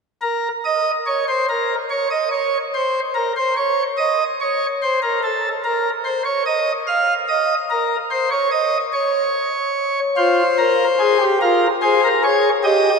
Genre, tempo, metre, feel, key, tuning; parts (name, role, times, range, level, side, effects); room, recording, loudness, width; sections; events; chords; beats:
classical, baroque-style 3-part fugue for pipe organ; 48 BPM (dotted quarters); 12/8; straight; A4 = 440 Hz
pipe organ, principal chorus; solo; 0.2-13.0 s; F4 to F5; -16 LUFS; equal
wet cathedral reverb, RT60 5.3 s; -16 LUFS; side -4 dB against mid
0.2-13.0 A section
0.2 N.C.; 10.2 Fm
| 0.23 1.49 2.73 3.98 | 5.22 6.46 7.71 8.94 | 10.17 11.41 12.65